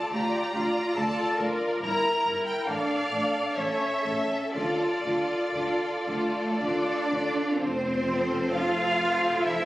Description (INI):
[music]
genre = classical, slow romantic movement for string orchestra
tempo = 54-73 BPM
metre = 3/4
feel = rubato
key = D minor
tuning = A4 = 440 Hz
[part]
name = clear studio violin section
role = melody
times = 0.0-9.7 s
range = C5 to Bb5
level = -31 LUFS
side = left 1 dB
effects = none
[part]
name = warm symphonic violin section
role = second line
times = 0.0-9.7 s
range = C#4 to F5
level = -28 LUFS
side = equal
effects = none
[part]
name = clear symphonic viola section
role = accompaniment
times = 0.0-9.7 s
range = F3 to D5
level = -31 LUFS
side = equal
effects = none
[part]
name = rich symphonic cello section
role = bass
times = 0.1-9.7 s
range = D2 to F4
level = -30 LUFS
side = right 1 dB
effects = none
[part]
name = warm symphonic double bass section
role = bass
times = 0.1-9.7 s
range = F1 to D2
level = -38 LUFS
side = equal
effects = none
[sound]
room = wet recital hall reverb, RT60 1.6 s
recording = recorded on a phone in the room, club reverb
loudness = -24 LUFS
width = side -16 dB against mid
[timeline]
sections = 0.0-7.6 A section; 7.6-9.7 B section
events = none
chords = 0.0 Dm; 1.8 Edim/G; 2.7 Dm/A; 3.6 A; 4.5 Dm; 7.6 F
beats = 0.13 0.96 | 1.82 2.67 3.57 | 4.55 5.54 6.61 | 7.59 8.56 9.44